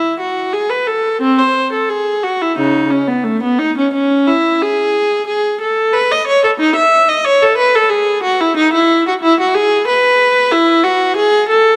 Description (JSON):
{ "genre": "classical, baroque-style suite movement for unaccompanied viola", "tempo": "91 BPM", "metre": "4/4", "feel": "rubato", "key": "unclear", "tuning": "A4 = 443 Hz", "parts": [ { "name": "rich viola", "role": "solo", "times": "0.0-11.8 s", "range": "C#3 to E5", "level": "-13 LUFS", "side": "equal", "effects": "none" } ], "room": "moderate concert hall reverb, RT60 2.5 s", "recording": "none", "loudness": "-13 LUFS", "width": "mono", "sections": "0.0-11.8 A section", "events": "none", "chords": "none" }